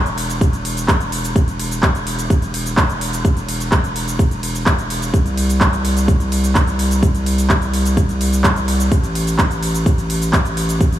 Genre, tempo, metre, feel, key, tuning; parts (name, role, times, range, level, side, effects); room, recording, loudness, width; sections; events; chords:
EDM, festival progressive house; 127 BPM; 4/4; straight; A4 = 440 Hz
saturated sub bass; bass; 0.0-11.0 s; E1 to C2; -20 LUFS; equal; sidechain pumping
big-room dance drum kit; drums; 0.1-11.0 s; cabasa, handclaps, hi-hat, ride cymbal; -21 LUFS; right 1 dB; overdrive
electronic kick drum; drums; 0.4-10.9 s; -15 LUFS; equal
light reverb, digital ambience; small room ambience; -15 LUFS; side -12 dB against mid
0.0-11.0 A section